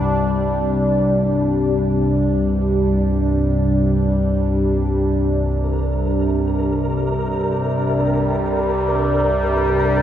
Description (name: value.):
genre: dark ambient drone.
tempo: free time.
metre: none.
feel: none.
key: unclear.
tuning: A4 = 437 Hz.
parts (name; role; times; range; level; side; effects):
sweeping resonant pad; sustained chords; 0.0-10.0 s; C3 to G4; -19 LUFS; right 1 dB; chorus, phaser.
analog drone; drone; 0.0-10.0 s; C2 to G2; -20 LUFS; left 1 dB; chorus.
flickering grainy texture; texture; 5.7-10.0 s; Bb4; -25 LUFS; equal; built-in reverb.
room: wet huge ambient reverb, RT60 7.3 s.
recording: none.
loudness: -16 LUFS.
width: side -10 dB against mid.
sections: 0.0-10.0 A section.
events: none.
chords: 0.0 C5.